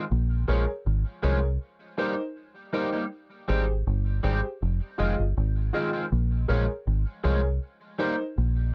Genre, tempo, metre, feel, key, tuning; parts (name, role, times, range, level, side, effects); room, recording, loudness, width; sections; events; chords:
reggae; 80 BPM; 4/4; straight; A4 = 440 Hz
electric guitar at the edge of break-up; accompaniment; 0.0-8.2 s; Eb3 to G4; -34 LUFS; equal; analog chorus, tape echo
deep dub fingered electric bass; bass; 0.1-8.7 s; F1 to C2; -27 LUFS; equal
dark baby grand piano; stabs; 0.5-8.2 s; Eb4 to Eb5; -33 LUFS; equal
little or no reverb; dry, close 1970s-style studio recording; -27 LUFS; mono
0.0-8.7 A section
0.1 Bbm7; 1.6 Cm7; 3.1 Abmaj7; 4.6 Fm7; 6.1 Bbm7; 7.6 Cm7